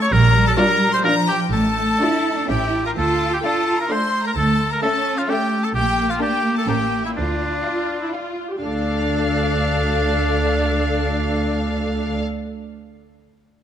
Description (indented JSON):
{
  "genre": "cinematic, playful, whimsical film cue",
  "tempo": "128 BPM",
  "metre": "3/4",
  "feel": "straight",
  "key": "D minor",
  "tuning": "A4 = 439 Hz",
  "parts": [
    { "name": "rich studio violin section", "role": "second line", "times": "0.0-12.2 s", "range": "D5 to C#6", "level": "-27 LUFS", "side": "left 4 dB", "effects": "none" },
    { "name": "warm oboe", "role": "second line", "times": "0.0-12.2 s", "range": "D4 to C#5", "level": "-22 LUFS", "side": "equal", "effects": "none" },
    { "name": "rich studio cello section", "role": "bass", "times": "0.0-12.2 s", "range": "D2 to F4", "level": "-24 LUFS", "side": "right 1 dB", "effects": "none" },
    { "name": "rich studio double bass section", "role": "bass", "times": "0.1-12.2 s", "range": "A1 to D2", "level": "-22 LUFS", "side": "right 2 dB", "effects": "none" },
    { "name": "rich studio violin section", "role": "melody", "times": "0.6-12.2 s", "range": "D5 to A5", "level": "-30 LUFS", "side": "left 4 dB", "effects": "none" },
    { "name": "warm studio viola section", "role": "accompaniment", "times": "0.6-12.2 s", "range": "C#4 to Bb4", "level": "-25 LUFS", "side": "left 1 dB", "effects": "none" }
  ],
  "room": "light reverb",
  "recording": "none",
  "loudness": "-17 LUFS",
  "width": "side -9 dB against mid",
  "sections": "0.0-8.6 A section; 8.6-11.4 B section",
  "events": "none",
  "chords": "0.1 Bb; 1.5 Dm/A; 2.5 A; 3.0 Dm; 4.4 A/D; 5.7 Bbmaj7; 6.7 A7b9; 7.2 Dm"
}